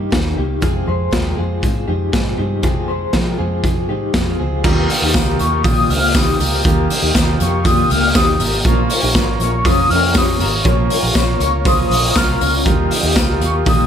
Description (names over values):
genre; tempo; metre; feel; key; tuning
jangly indie pop; 120 BPM; 4/4; straight; Eb mixolydian; A4 = 441 Hz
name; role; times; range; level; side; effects
picked steel-string acoustic guitar; accompaniment; 0.0-13.9 s; F2 to Ab4; -23 LUFS; right 7 dB; none
electric guitar through a small old amp; arpeggios; 0.0-13.9 s; Bb3 to Db5; -22 LUFS; left 5 dB; tremolo, ping-pong delay
vintage muted fingered electric bass; bass; 0.0-13.9 s; Ab1 to F3; -20 LUFS; equal; none
raw garage drum kit; drums; 0.1-13.8 s; crash cymbal, hi-hat, kick drum, snare drum; -17 LUFS; equal; none
combo organ; accompaniment; 4.6-13.9 s; F4 to Eb5; -25 LUFS; right 6 dB; none
tambourine; percussion; 4.6-13.8 s; none; -30 LUFS; left 8 dB; none
warm velvety synth lead; melody; 5.4-13.9 s; Db6 to F6; -19 LUFS; left 3 dB; chorus, plate reverb
room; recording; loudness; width
light reverb; none; -13 LUFS; side -8 dB against mid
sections
0.0-4.6 A section; 4.6-13.9 B section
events
none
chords
0.0 Eb; 0.6 Fm; 4.6 Ebadd9; 8.7 Bbm; 12.7 Ebadd9